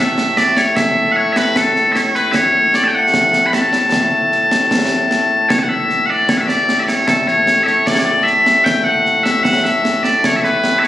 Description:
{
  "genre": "scottish traditional, Scottish pipe music",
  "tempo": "76 BPM",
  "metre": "2/4",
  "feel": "straight",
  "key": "A major",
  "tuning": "A4 = 440 Hz",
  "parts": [
    { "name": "loud bright bagpipes", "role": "melody", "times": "0.0-10.9 s", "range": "A2 to B5", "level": "-13 LUFS", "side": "left 1 dB", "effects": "none" },
    { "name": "concert snare drum and concert bass drum", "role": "drums", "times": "0.2-10.9 s", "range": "none", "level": "-19 LUFS", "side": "right 1 dB", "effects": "none" }
  ],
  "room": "moderate concert hall reverb, RT60 2.1 s",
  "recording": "recorded on a phone in the room, studio reverb",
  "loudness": "-12 LUFS",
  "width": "side -13 dB against mid",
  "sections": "0.0-5.5 A section; 5.5-10.9 B section",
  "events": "none",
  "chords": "none"
}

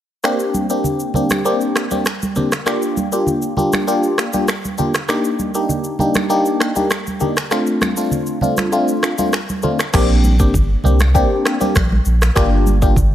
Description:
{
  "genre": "afrobeats",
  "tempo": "99 BPM",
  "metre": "4/4",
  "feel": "straight",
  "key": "Bb major",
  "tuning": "A4 = 440 Hz",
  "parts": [
    { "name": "barking FM electric piano", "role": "accompaniment", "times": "0.2-13.0 s", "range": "A3 to G4", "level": "-18 LUFS", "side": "left 1 dB", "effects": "phaser" },
    { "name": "afro-pop drum kit", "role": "drums", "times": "0.2-13.1 s", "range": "crash cymbal, finger snaps, kick drum, rim click, shaker", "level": "-20 LUFS", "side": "equal", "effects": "none" },
    { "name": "congas", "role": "percussion", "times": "0.5-13.1 s", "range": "none", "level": "-23 LUFS", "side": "right 3 dB", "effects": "none" },
    { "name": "warm sub bass", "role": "bass", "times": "9.9-13.1 s", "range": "G1 to C2", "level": "-14 LUFS", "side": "equal", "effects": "none" }
  ],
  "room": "light reverb, digital ambience",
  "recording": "none",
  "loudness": "-14 LUFS",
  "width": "side -12 dB against mid",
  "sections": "0.2-9.9 A section; 9.9-13.1 B section",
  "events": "none",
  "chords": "0.2 Bb69; 2.7 Gm7; 5.1 Ebmaj7; 7.5 Dm7; 9.9 Bb69; 12.4 Gm7"
}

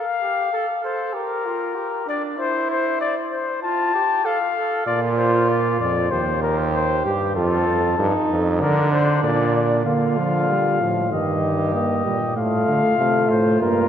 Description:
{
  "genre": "classical, imitative canzona for brass ensemble",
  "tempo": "96 BPM",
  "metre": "4/4",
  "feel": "straight",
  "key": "Bb major",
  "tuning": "A4 = 440 Hz",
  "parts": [
    { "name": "dark trumpet", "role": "melody", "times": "0.0-13.9 s", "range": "G4 to A5", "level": "-22 LUFS", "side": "left 5 dB", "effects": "none" },
    { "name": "warm flugelhorn", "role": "second line", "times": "0.0-13.9 s", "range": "D4 to A4", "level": "-25 LUFS", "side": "right 4 dB", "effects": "none" },
    { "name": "clear bass trombone", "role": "bass", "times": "4.9-13.9 s", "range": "Eb2 to D3", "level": "-21 LUFS", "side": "right 2 dB", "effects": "none" },
    { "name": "warm euphonium", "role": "accompaniment", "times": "9.9-13.9 s", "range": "Eb3 to Bb3", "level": "-21 LUFS", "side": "equal", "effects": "none" }
  ],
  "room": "wet church reverb, RT60 3.4 s",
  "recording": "none",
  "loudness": "-18 LUFS",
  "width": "side -9 dB against mid",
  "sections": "0.0-9.9 A section; 9.9-13.9 B section",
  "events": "none",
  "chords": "0.0 F; 1.1 Gm; 2.4 C/E; 3.6 F; 4.9 Bb; 6.1 Cm/Eb; 7.4 F; 8.6 Bb/D; 11.1 Eb/G; 12.4 F/A"
}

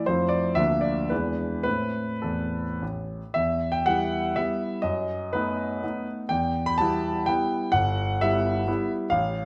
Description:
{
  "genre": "classical, romantic triple-time dance for piano with dotted rhythms",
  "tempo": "98-137 BPM",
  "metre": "3/4",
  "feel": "rubato",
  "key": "A minor, E minor from 3.4 s",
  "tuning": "A4 = 441 Hz",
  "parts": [
    { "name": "clear grand piano", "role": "solo", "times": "0.0-9.5 s", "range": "G1 to B5", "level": "-26 LUFS", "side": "equal", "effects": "none" }
  ],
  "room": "moderate recital hall reverb, RT60 1.4 s",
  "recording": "none",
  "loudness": "-26 LUFS",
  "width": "mono",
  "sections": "0.0-3.4 A section; 3.4-9.5 B section",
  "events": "none",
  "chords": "0.1 Fmaj7; 0.6 Bb/D; 1.1 E7; 1.7 Am; 3.4 Em; 4.8 B7/F#; 6.3 Em; 7.7 Em/G"
}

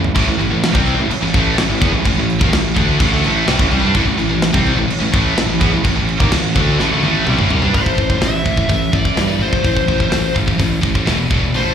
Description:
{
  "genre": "heavy metal",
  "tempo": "126 BPM",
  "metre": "4/4",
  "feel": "straight",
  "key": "A minor",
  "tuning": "A4 = 439 Hz",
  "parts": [
    { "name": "heavy high-gain guitar", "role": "riff", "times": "0.0-11.7 s", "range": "E2 to D4", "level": "-21 LUFS", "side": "right 10 dB", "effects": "distortion, slapback echo" },
    { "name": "high-gain distorted guitar", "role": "riff", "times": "0.0-11.7 s", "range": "E2 to D4", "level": "-21 LUFS", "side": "left 10 dB", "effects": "distortion, slapback echo" },
    { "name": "tight distorted guitar", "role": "riff", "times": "0.0-7.7 s", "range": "A2 to D4", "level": "-21 LUFS", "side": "right 2 dB", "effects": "distortion, slapback echo" },
    { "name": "fuzz fingered electric bass", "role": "bass", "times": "0.0-11.7 s", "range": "E1 to G2", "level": "-18 LUFS", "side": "equal", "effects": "overdrive" },
    { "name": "tight metal drum kit", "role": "drums", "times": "0.0-11.7 s", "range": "crash cymbal, hi-hat, kick drum, snare drum, toms", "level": "-19 LUFS", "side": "equal", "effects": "none" },
    { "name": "high-gain lead guitar", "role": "melody", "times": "7.7-11.7 s", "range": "C5 to E5", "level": "-20 LUFS", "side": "left 2 dB", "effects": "distortion, slapback echo, tape echo" }
  ],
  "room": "studio reverb",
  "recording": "live gig heard through the venue's PA, club reverb",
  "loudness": "-13 LUFS",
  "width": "side -8 dB against mid",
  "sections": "0.0-7.7 A section; 7.7-11.7 B section",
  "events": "drum fill 0.0, 6.8-7.7",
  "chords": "0.0 Am; 11.1 E5"
}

